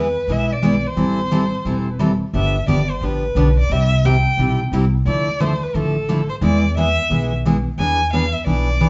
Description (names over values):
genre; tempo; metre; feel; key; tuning
acoustic string swing (jazz manouche); 176 BPM; 4/4; swing 62% on 8ths; unclear; A4 = 436 Hz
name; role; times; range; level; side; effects
rich violin; melody; 0.0-8.9 s; A4 to G#5; -24 LUFS; equal; none
picked steel-string acoustic guitar; accompaniment; 0.0-8.9 s; C3 to A4; -22 LUFS; equal; none
upright bass; bass; 0.0-8.9 s; E1 to E2; -23 LUFS; equal; none
room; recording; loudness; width
wet studio reverb, RT60 0.8 s; band playing live in one room, nothing above 7.7 kHz; -18 LUFS; mono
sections
0.0-2.3 A section; 2.3-8.9 B section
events
none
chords
0.0 E; 1.0 Am7; 2.3 G7; 3.7 C; 5.1 Dmadd9; 6.4 E; 7.8 E7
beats
0.30 0.64 | 0.98 1.32 1.66 2.00 | 2.34 2.68 3.02 3.36 | 3.70 4.04 4.38 4.72 | 5.06 5.40 5.74 6.08 | 6.42 6.76 7.10 7.44 | 7.78 8.12 8.46 8.80